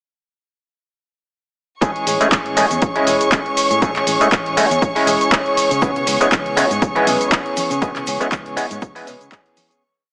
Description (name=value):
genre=filtered disco house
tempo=120 BPM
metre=4/4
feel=swing 55% on 16ths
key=A major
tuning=A4 = 440 Hz
part: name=overdriven clav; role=accompaniment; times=1.8-9.4 s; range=G#3 to B4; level=-21 LUFS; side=equal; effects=phaser, vintage 12-bit sampler grit, sidechain pumping
part: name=warm studio violin section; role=sustained chords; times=1.8-9.8 s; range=C#5 to C#6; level=-23 LUFS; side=equal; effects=sidechain pumping
part: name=direct-recorded clean electric guitar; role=riff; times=1.8-9.8 s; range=E3 to G#4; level=-25 LUFS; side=equal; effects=sidechain pumping
part: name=electronic kick drum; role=drums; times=1.8-9.4 s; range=none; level=-22 LUFS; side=equal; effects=none
part: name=punchy analog drum machine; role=drums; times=1.8-9.8 s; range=cabasa, handclaps, hi-hat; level=-24 LUFS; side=equal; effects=sidechain pumping on hats, sidechain pumping on perc
part: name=fingered electric bass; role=bass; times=2.1-9.3 s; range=E1 to C#3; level=-31 LUFS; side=equal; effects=sidechain pumping
part: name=tube shaker and congas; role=percussion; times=5.8-9.8 s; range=none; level=-38 LUFS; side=equal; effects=none
room=light reverb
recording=heavily compressed radio sound, small speaker sound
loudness=-17 LUFS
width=mono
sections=1.8-9.8 drop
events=drop 1.8-9.8; fade-out 7.2-9.8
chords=1.8 Amaj7; 5.8 C#m7